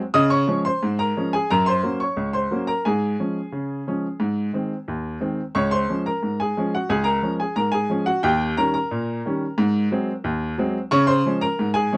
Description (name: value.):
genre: ragtime piano.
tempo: 89 BPM.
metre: 2/4.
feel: straight.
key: Db major.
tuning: A4 = 441 Hz.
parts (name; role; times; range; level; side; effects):
clear upright piano; solo; 0.1-12.0 s; Db2 to Eb6; -20 LUFS; equal; none.
room: little or no reverb.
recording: dry, close 1970s-style studio recording.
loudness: -20 LUFS.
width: side -25 dB against mid.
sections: 0.0-12.0 A section.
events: none.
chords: 0.1 Db; 1.5 Gb; 2.8 Db/Ab; 4.2 Ab; 5.5 Db; 8.2 Eb7; 9.6 Ab7; 10.9 Db.